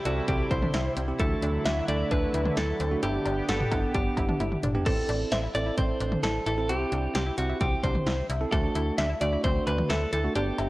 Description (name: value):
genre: synth-pop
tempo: 131 BPM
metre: 4/4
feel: straight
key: unclear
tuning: A4 = 439 Hz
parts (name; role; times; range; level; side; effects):
- direct-recorded clean electric guitar; melody; 0.0-10.7 s; F#4 to E5; -30 LUFS; equal; spring reverb
- chorused pulse-width pad; sustained chords; 0.0-4.8 s; C3 to G4; -35 LUFS; equal; none
- bell-like tine electric piano; accompaniment; 0.1-10.7 s; A3 to F#5; -33 LUFS; right 2 dB; none
- analog pluck; arpeggios; 0.1-10.7 s; C4 to F#4; -35 LUFS; left 1 dB; chorus, phaser, tape echo
- slap-like FM bass; bass; 0.1-10.7 s; G1 to D2; -30 LUFS; equal; none
- punchy analog drum machine; drums; 0.1-10.7 s; cowbell, crash cymbal, hi-hat, kick drum, snare drum, toms; -30 LUFS; equal; none
room: moderate concert hall reverb, RT60 2.2 s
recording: worn, warbling old tape, cassette tape, warbly pitch drift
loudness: -24 LUFS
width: side -18 dB against mid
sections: 0.0-4.9 A section; 4.9-10.7 A section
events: drum fill 4.4-4.9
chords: 0.0 C; 1.2 Dadd9; 3.0 G; 4.9 Am; 6.7 C; 8.5 Dadd9